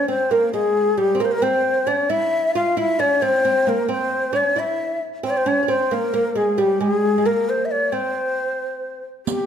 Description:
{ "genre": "Persian modal ensemble", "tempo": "89 BPM (dotted quarters)", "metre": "6/8", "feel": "straight", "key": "C dastgah homayun", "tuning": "A4 = 440 Hz", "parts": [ { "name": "breathy ney", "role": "melody", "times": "0.0-9.5 s", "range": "G4 to F5", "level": "-20 LUFS", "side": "left 2 dB", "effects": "none" }, { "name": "oud", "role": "second line", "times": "0.0-9.0 s", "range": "G3 to F4", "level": "-22 LUFS", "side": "right 2 dB", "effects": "none" }, { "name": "riq", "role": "percussion", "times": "9.3-9.4 s", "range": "none", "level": "-22 LUFS", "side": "right 9 dB", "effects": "none" } ], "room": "moderate recital hall reverb, RT60 1.5 s", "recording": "none", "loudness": "-18 LUFS", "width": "side -8 dB against mid", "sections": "0.0-9.3 A section", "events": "none", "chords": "none", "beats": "0.53 | 1.21 1.88 | 2.55 3.23 | 3.90 4.57 | 5.24 5.92 | 6.59 7.26 | 7.93 8.61 | 9.28" }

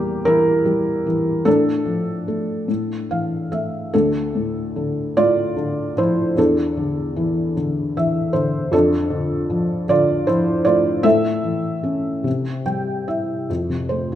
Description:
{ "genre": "classical, lyrical solo piano", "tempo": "48-52 BPM (dotted quarters)", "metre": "6/8", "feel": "rubato", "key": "D minor", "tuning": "A4 = 441 Hz", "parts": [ { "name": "felt-muted upright piano", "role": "solo", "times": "0.0-14.2 s", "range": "D2 to G5", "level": "-17 LUFS", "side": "equal", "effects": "none" } ], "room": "wet recital hall reverb, RT60 1.4 s", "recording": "none", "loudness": "-17 LUFS", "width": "side -11 dB against mid", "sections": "0.0-13.5 A section", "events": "felt piano fill 2.7-3.9, 7.6-8.7, 12.3-13.5", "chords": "0.0 Edim; 1.5 Dm/A; 2.7 A5; 3.9 Dm; 6.4 Asus4/E; 8.7 Dm/F; 11.1 A; 12.3 C; 13.5 F", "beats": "0.27 | 1.47 2.69 | 3.94 5.16 | 6.37 7.56 | 8.73 9.89 | 11.05 12.26 | 13.50" }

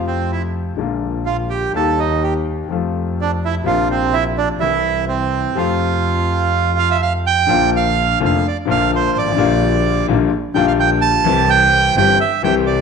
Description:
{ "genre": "tango", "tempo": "126 BPM", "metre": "4/4", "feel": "rubato", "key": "F major, Bb major from 7.5 s", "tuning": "A4 = 439 Hz", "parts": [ { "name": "clear concert grand piano", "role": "accompaniment", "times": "0.0-12.8 s", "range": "F1 to G4", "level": "-19 LUFS", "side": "left 10 dB", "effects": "none" }, { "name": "dark double bass", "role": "bass", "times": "0.0-12.8 s", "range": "F1 to F2", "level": "-22 LUFS", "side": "right 1 dB", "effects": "none" }, { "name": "bandoneon", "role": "melody", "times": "0.1-12.8 s", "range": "C4 to A5", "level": "-17 LUFS", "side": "right 8 dB", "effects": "slapback echo" } ], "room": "moderate echo chamber reverb, RT60 1.3 s, studio reverb", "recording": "1960s-style stereo with parts hard left and right", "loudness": "-14 LUFS", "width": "side -6 dB against mid", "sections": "0.0-7.5 A section; 7.5-12.8 B section", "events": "none", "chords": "0.0 F; 0.8 Bb7; 1.7 Eb; 2.7 F; 3.7 Bbadd9; 4.6 C; 5.6 F; 7.5 Bb; 9.4 Gm7/Bb; 11.3 C", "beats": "0.30 0.78 1.26 | 1.74 2.23 2.70 3.18 | 3.66 4.13 4.61 5.09 | 5.57 6.04 6.53 7.01 | 7.49 7.97 8.44 8.91 | 9.38 9.85 10.32 10.79 | 11.26 11.73 12.20 12.67" }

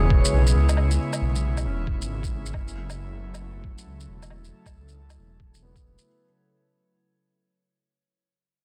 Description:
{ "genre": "future garage", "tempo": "136 BPM", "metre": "4/4", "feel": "swing 63% on 16ths", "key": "unclear", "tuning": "A4 = 440 Hz", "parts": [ { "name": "felt-muted upright piano", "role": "accompaniment", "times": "0.0-6.2 s", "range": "B3 to C#5", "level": "-36 LUFS", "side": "equal", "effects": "sidechain pumping, digital delay" }, { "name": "airy breathy pad", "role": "sustained chords", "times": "0.0-6.1 s", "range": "C#3 to A4", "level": "-34 LUFS", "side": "equal", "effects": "chorus, sidechain pumping" }, { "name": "swelling detuned saw bass", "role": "bass", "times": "0.0-6.0 s", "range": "E1 to C#2", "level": "-26 LUFS", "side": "equal", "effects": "sidechain pumping" }, { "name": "drifting glass-harmonics texture", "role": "texture", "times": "0.0-6.1 s", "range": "C#5", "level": "-44 LUFS", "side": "equal", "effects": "chorus, built-in reverb" }, { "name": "electronic kick drum", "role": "drums", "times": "0.1-5.8 s", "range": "none", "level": "-26 LUFS", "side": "equal", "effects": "none" }, { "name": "shaker and woodblock", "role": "drums", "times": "0.2-6.0 s", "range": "none", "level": "-34 LUFS", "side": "equal", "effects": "none" } ], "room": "little or no reverb", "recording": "dense, heavily limited modern master", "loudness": "-24 LUFS", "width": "mono", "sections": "0.0-6.1 A section", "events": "fade-out 0.0-6.1", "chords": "0.0 E6; 2.5 F#m7", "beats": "0.33 | 0.77 1.21 1.65 2.09 | 2.53 2.97 3.42 3.86 | 4.30 4.74 5.18 5.62" }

